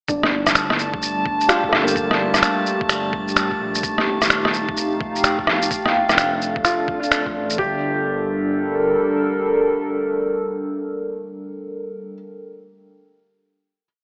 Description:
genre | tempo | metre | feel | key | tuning
future garage | 128 BPM | 4/4 | swing 63% on 16ths | G minor | A4 = 438 Hz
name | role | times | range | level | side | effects
clear upright piano | accompaniment | 0.1-13.9 s | Bb3 to A4 | -27 LUFS | equal | sidechain pumping, low-pass filter, tape echo
dark analog pad | sustained chords | 0.5-12.1 s | G3 to A5 | -25 LUFS | equal | chorus, phaser, sidechain pumping
dark detuned saw bass | bass | 0.1-9.0 s | Eb1 to Bb1 | -34 LUFS | equal | tube saturation, sidechain pumping
electronic kick drum | drums | 0.1-7.7 s | none | -32 LUFS | equal | none
electronic shaker, rim click and finger snaps | drums | 0.1-7.6 s | none | -22 LUFS | equal | none
drifting glass-harmonics texture | texture | 0.4-7.6 s | A3 to A5 | -30 LUFS | equal | chorus, built-in reverb
room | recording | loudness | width
wet recital hall reverb, RT60 1.6 s, digital ambience | AM radio sound | -20 LUFS | mono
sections
0.1-7.6 groove; 7.6-11.3 final chord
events
filter sweep on upright piano 0.1-7.6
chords
0.1 Gm7; 3.8 Ebadd9; 5.7 Dm/F; 7.6 Gm7

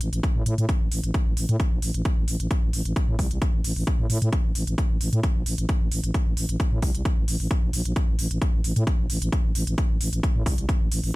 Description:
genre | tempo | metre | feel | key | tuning
driving peak-time techno | 132 BPM | 4/4 | straight | A minor | A4 = 443 Hz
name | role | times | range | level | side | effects
growling FM bass | bass | 0.0-11.1 s | A1 to A2 | -25 LUFS | equal | sidechain pumping
electronic hi-hat | drums | 0.0-11.1 s | none | -32 LUFS | right 2 dB | overdrive, studio ambience
electronic kick drum | drums | 0.2-10.8 s | none | -23 LUFS | equal | overdrive, studio ambience
room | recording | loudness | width
digital ambience | none | -22 LUFS | side -20 dB against mid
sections
0.0-11.2 A section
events
none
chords
none

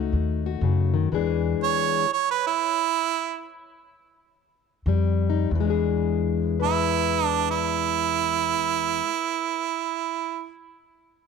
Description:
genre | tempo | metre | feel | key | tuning
acoustic country blues, solo or duo | 90-123 BPM | 4/4 | swing 64% on 8ths | unclear | A4 = 440 Hz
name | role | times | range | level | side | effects
fingerpicked plugged-in steel-string acoustic guitar | accompaniment | 0.0-9.7 s | E2 to E5 | -26 LUFS | left 12 dB | none
upright bass | bass | 0.0-1.5, 4.9-8.5 s | C#2 to F#2 | -26 LUFS | equal | none
bright harmonica | melody | 1.6-3.5, 6.6-10.5 s | E4 to C#5 | -23 LUFS | right 12 dB | none
room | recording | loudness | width
light reverb, small room ambience | 1960s-style stereo with parts hard left and right | -22 LUFS | side -5 dB against mid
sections
0.0-5.5 A section; 5.5-10.8 B section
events
slowing down 1.1-5.5; stop 1.1-4.9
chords
0.0 B7 (rootless); 1.1 E7; 4.9 Fsus2; 5.5 E7

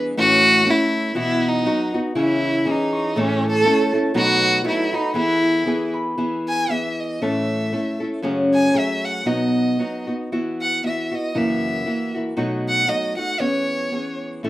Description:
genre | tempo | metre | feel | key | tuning
mexican folk, mariachi | 117 BPM | 2/4 | swing 55% on 8ths | E major | A4 = 439 Hz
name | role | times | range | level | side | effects
nylon-string guitar | accompaniment | 0.0-14.5 s | F#2 to A4 | -21 LUFS | equal | none
concert harp | arpeggios | 0.0-8.0 s | B3 to A6 | -28 LUFS | right 2 dB | none
warm violin | melody | 0.2-14.2 s | C#4 to G#5 | -20 LUFS | equal | none
room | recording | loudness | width
wet studio reverb, RT60 0.5 s | rough home demo mix | -18 LUFS | side -15 dB against mid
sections
0.0-6.2 A section; 6.2-14.5 B section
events
none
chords
0.2 A; 1.2 Bsus4; 1.7 B; 2.2 C#m; 3.2 A; 4.2 B7; 5.2 E; 7.2 A; 8.2 F#madd9; 9.3 B; 10.3 Esus2; 11.3 F#7; 12.4 B7; 13.4 E6

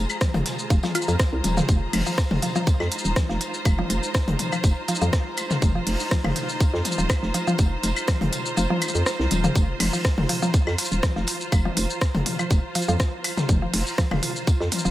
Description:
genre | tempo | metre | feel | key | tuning
minimal techno | 122 BPM | 4/4 | swing 53% on 16ths | F minor | A4 = 440 Hz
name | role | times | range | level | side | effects
hollow knocking FM bass | bass | 0.0-14.9 s | Eb1 to F2 | -25 LUFS | equal | sidechain pumping
clear studio string section | texture | 0.0-14.9 s | F4 to Bb5 | -31 LUFS | right 1 dB | sidechain pumping
flickering grainy texture | texture | 0.0-14.9 s | F3 to Ab4 | -37 LUFS | right 2 dB | built-in reverb, sidechain pumping
minimal click drum kit | drums | 0.1-14.9 s | hi-hat, rim click, shaker | -28 LUFS | equal | none
electronic claves and toms | percussion | 0.1-14.8 s | none | -29 LUFS | left 2 dB | none
electronic kick drum | drums | 0.2-14.6 s | none | -20 LUFS | equal | overdrive
vintage drum kit | drums | 0.2-14.8 s | hi-hat, snare drum, tambourine | -37 LUFS | equal | sidechain pumping on hats, high-pass filter on hats, high-pass filter on snare, sidechain pumping on perc, high-pass filter on perc, high-pass filter on room
mallet-like synth pluck | riff | 0.3-14.9 s | F3 to F4 | -29 LUFS | equal | chorus, sidechain pumping, tape echo
room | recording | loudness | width
little or no reverb | none | -20 LUFS | side -14 dB against mid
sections
0.0-14.9 A section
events
kick drops out 8.6-9.6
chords
0.0 Fsus4

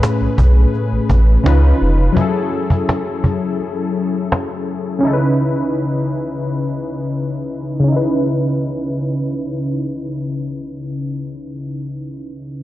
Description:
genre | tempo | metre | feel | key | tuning
contemporary R&B | 84 BPM | 4/4 | straight | C# minor | A4 = 440 Hz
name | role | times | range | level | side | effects
warm analog keys | accompaniment | 0.0-12.6 s | A2 to B4 | -18 LUFS | left 1 dB | chorus
cajon | drums | 0.0-4.5 s | none | -18 LUFS | equal | none
warm sub bass | bass | 0.2-2.1 s | E#1 to C#2 | -12 LUFS | equal | none
room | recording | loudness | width
light reverb | dark, warm production, low-pass filter | -15 LUFS | side -15 dB against mid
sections
0.0-7.9 A section; 7.9-10.7 B section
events
filter sweep 0.0-7.9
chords
0.0 Amaj7; 1.5 C#7; 2.2 F#m9; 5.0 C#m7

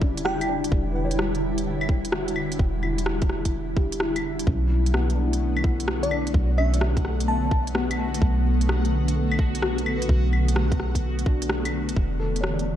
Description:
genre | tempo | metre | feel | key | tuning
future garage | 128 BPM | 4/4 | swing 67% on 16ths | E dorian | A4 = 440 Hz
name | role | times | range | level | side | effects
felt-muted upright piano | accompaniment | 0.0-12.8 s | A3 to D5 | -32 LUFS | left 3 dB | vintage 12-bit sampler grit, sidechain pumping, tape echo
granular cloud pad | sustained chords | 0.0-12.8 s | D3 to E4 | -28 LUFS | equal | built-in reverb, sidechain pumping
soft 808-style bass | bass | 0.0-12.8 s | E1 to B1 | -25 LUFS | equal | sidechain pumping
electronic kick drum | drums | 0.0-12.1 s | none | -24 LUFS | equal | none
bell-like FM electric piano | melody | 0.2-0.6, 6.0-7.7 s | D5 to A5 | -32 LUFS | right 1 dB | chorus, tape echo
organic electronic drum kit | drums | 0.2-12.7 s | claves, hi-hat, rim click | -30 LUFS | left 1 dB | none
backwards swelling texture | texture | 5.5-12.8 s | D4 to F#5 | -38 LUFS | right 1 dB | built-in reverb
room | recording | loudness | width
digital ambience | none | -21 LUFS | side -11 dB against mid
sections
0.0-12.0 A section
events
band accent 11.5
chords
0.0 Em9; 4.5 Bm9; 12.0 Em7

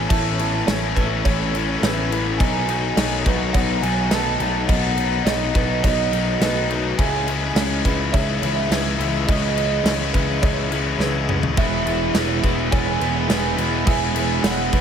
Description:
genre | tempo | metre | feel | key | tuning
post-rock | 104 BPM | 4/4 | straight | E major | A4 = 440 Hz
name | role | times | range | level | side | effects
electric guitar through a small old amp | melody | 0.0-14.8 s | D#5 to A5 | -27 LUFS | right 5 dB | analog chorus, analog delay
shimmering ambient pad | sustained chords | 0.0-14.8 s | E3 to C#6 | -35 LUFS | right 1 dB | none
felt-muted upright piano | arpeggios | 0.0-14.8 s | E4 to E5 | -32 LUFS | right 11 dB | analog delay
twelve-string electric guitar | arpeggios | 0.0-14.8 s | E2 to F#4 | -30 LUFS | left 2 dB | none
tight distorted guitar | riff | 0.0-14.8 s | A2 to E4 | -24 LUFS | left 7 dB | distortion
fuzz picked electric bass | bass | 0.0-14.8 s | E1 to C#2 | -25 LUFS | equal | overdrive
big rock drum kit | drums | 0.1-14.8 s | crash cymbal, kick drum, snare drum, toms | -23 LUFS | equal | none
distorted electric guitar | riff | 11.6-14.8 s | E3 to E4 | -25 LUFS | right 15 dB | distortion
room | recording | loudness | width
light reverb, small room ambience | none | -18 LUFS | side -8 dB against mid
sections
0.0-14.8 A section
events
drum fill 11.0-11.6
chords
0.0 Aadd9; 2.4 B7; 7.0 C#madd9; 11.6 E

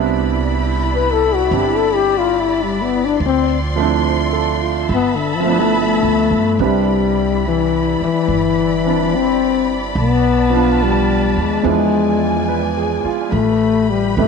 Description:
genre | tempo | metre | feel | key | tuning
jazz ballad | 71 BPM | 4/4 | swing 67% on 8ths | C major | A4 = 440 Hz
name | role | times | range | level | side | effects
clear baby grand piano | accompaniment | 0.0-14.3 s | C3 to C5 | -20 LUFS | right 15 dB | none
warm symphonic string section | sustained chords | 0.0-14.3 s | F3 to C6 | -23 LUFS | left 1 dB | none
upright bass | bass | 0.0-14.3 s | G1 to G2 | -22 LUFS | right 2 dB | none
mellow trombone | melody | 1.0-14.3 s | D3 to B4 | -16 LUFS | left 8 dB | none
room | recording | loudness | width
moderate plate reverb, RT60 2.3 s | 1960s-style stereo with parts hard left and right | -14 LUFS | side -5 dB against mid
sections
0.0-6.6 A section; 6.6-14.3 B section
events
trombone solo 0.0-6.6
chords
0.0 Cmaj9; 3.2 Dm7; 4.9 G13; 6.6 Cmaj9; 10.0 Bm7b5; 11.7 E7b9; 13.3 A7sus2

